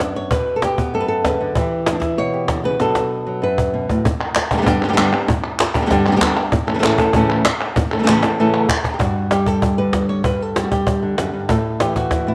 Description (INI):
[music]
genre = flamenco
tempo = 193 BPM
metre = 4/4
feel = straight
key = unclear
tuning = A4 = 443 Hz
[part]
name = flamenco guitar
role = melody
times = 0.0-12.3 s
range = F#2 to D5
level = -20 LUFS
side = equal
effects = none
[part]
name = cajon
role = percussion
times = 0.0-12.3 s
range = none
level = -24 LUFS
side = equal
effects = none
[part]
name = palmas hand claps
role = percussion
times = 4.2-9.0 s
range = none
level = -24 LUFS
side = equal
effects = none
[sound]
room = wet echo chamber reverb, RT60 1.4 s, small room ambience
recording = none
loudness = -18 LUFS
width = mono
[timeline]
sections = 0.0-4.0 A section; 4.0-9.0 B section; 9.0-12.3 C section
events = drum fill 2.8-4.0, 8.2-9.0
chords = 0.0 Bm; 1.6 Em; 2.8 Bm; 4.0 G; 6.5 A; 9.0 G5; 11.5 A5